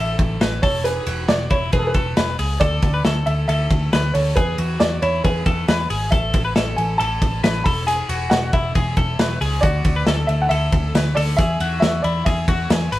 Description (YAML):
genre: jangly indie pop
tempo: 137 BPM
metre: 4/4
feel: straight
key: unclear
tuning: A4 = 443 Hz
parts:
  - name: dark upright piano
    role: melody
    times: 0.0-12.9 s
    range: A4 to B5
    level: -23 LUFS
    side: right 1 dB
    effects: none
  - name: twelve-string electric guitar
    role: arpeggios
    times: 0.0-13.0 s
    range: E4 to B4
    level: -26 LUFS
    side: left 3 dB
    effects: none
  - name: vintage muted picked electric bass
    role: bass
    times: 0.0-13.0 s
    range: E1 to E2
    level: -22 LUFS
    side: equal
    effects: none
  - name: loose indie drum kit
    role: drums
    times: 0.2-13.0 s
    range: hi-hat, kick drum, ride cymbal, snare drum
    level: -21 LUFS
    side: equal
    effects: none
room: moderate studio reverb, RT60 0.6 s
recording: band playing live in one room, vinyl crackle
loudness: -17 LUFS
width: side -16 dB against mid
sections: 0.0-13.0 A section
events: none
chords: 0.0 Asus2; 0.6 Eadd9; 2.6 D5; 4.4 Eadd9; 6.1 Asus2; 7.7 Eadd9; 9.6 D; 11.4 Eadd9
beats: 0.41 | 0.85 1.29 1.73 2.17 | 2.61 3.05 3.49 3.92 | 4.37 4.80 5.24 5.68 | 6.12 6.56 7.00 7.44 | 7.88 8.31 8.75 9.19 | 9.63 10.07 10.51 10.94 | 11.38 11.82 12.26 12.70